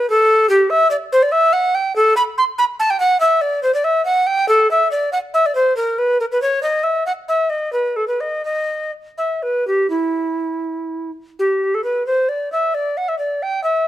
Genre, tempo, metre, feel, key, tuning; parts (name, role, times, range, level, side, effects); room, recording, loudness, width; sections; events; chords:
classical, baroque-style fantasia for unaccompanied recorder; 75-99 BPM (dotted quarters); 12/8; rubato; E minor; A4 = 435 Hz
mellow tenor recorder; solo; 0.0-13.9 s; E4 to C6; -15 LUFS; equal
moderate stone room reverb, RT60 1.1 s; dark, warm production; -15 LUFS; side -13 dB against mid
0.0-11.4 A section; 11.4-13.9 A section